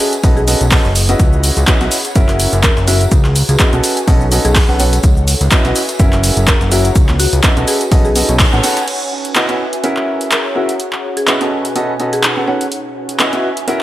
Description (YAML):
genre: piano house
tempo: 125 BPM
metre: 4/4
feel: swing 55% on 16ths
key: C# minor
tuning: A4 = 440 Hz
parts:
  - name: buzzing marimba with medium mallets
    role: melody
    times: 0.0-12.8 s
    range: F#4 to C#5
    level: -23 LUFS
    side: left 2 dB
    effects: dub echo
  - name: clear upright piano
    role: riff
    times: 0.0-13.8 s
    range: C#4 to F#5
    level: -18 LUFS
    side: right 1 dB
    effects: sidechain pumping, dub echo
  - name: breakbeat sampler-style drum kit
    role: drums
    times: 0.0-8.9 s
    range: hi-hat, shaker, snare drum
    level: -28 LUFS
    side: left 2 dB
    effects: none
  - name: punchy analog drum machine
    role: drums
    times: 0.0-13.8 s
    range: crash cymbal, handclaps, hi-hat, shaker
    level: -17 LUFS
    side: equal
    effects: overdrive, small room ambience
  - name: tambourine and congas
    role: percussion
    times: 0.0-8.9 s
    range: none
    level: -27 LUFS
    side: right 3 dB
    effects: none
  - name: airy breathy pad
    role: texture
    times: 0.0-13.8 s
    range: B2 to B5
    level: -23 LUFS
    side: equal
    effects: chorus, sidechain pumping
  - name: fat analog bass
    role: bass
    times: 0.2-8.6 s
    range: F#1 to C#2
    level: -14 LUFS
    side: equal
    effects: sidechain pumping
  - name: electronic kick drum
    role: drums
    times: 0.2-8.5 s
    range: none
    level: -12 LUFS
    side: equal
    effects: overdrive, small room ambience
room: light reverb, digital ambience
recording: none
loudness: -11 LUFS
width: side -14 dB against mid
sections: 0.0-8.9 A section; 8.9-13.8 B section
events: band accent 8.4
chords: 0.0 B9; 1.2 C#m11; 2.2 F#7; 3.1 C#m11; 3.8 B9; 5.0 C#m11; 6.0 F#7; 7.0 C#m11; 7.7 B9; 8.9 C#m11; 9.8 F#7; 10.8 C#m11; 11.5 B9; 12.7 C#m11